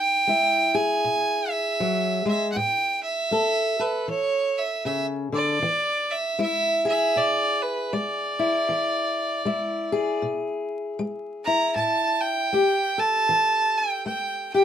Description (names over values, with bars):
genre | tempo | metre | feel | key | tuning
acoustic country blues, solo or duo | 78 BPM | 4/4 | swing 61% on 8ths | E mixolydian | A4 = 441 Hz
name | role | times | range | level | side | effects
clear fiddle | melody | 0.0-14.6 s | B4 to A#5 | -23 LUFS | right 2 dB | none
fingerpicked steel-string acoustic guitar | accompaniment | 0.0-14.6 s | A2 to A4 | -25 LUFS | left 2 dB | none
room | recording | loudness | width
light reverb | minimal, uncompressed stereo recording, vinyl crackle | -21 LUFS | side -9 dB against mid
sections
0.0-14.6 A section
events
none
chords
0.0 E; 2.6 A; 5.6 E7; 11.8 A7(no3)